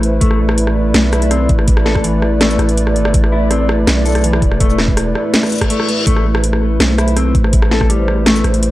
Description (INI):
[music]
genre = half-time drum and bass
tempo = 164 BPM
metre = 4/4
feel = half-time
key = A minor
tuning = A4 = 440 Hz
[part]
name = dark analog pad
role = sustained chords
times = 0.0-8.7 s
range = A3 to D5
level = -17 LUFS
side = equal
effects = chorus, vintage 12-bit sampler grit, sidechain pumping
[part]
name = long sustained 808-style bass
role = bass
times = 0.0-8.7 s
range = E1 to B1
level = -16 LUFS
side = equal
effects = tube saturation
[part]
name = drum and bass drum kit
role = drums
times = 0.0-8.7 s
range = hi-hat, rim click, shaker, snare drum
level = -18 LUFS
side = equal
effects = none
[part]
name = mellow electric guitar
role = arpeggios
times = 0.2-8.4 s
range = E3 to A4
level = -22 LUFS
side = left 3 dB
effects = tape echo
[part]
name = electronic kick drum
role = drums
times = 0.2-7.9 s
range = none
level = -14 LUFS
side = equal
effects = none
[part]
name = reverse cymbal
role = sound effects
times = 5.5-6.1 s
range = none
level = -22 LUFS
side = left 5 dB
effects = none
[sound]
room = little or no reverb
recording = dry, gritty hardware recording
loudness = -11 LUFS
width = side -16 dB against mid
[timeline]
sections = 0.0-8.7 A section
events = reverse cymbal 5.5-6.1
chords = 0.0 Amadd9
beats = | 0.21 0.58 0.94 1.31 | 1.68 2.04 2.41 2.77 | 3.14 3.50 3.87 4.24 | 4.60 4.97 5.33 5.70 | 6.07 6.43 6.80 7.16 | 7.53 7.89 8.26 8.63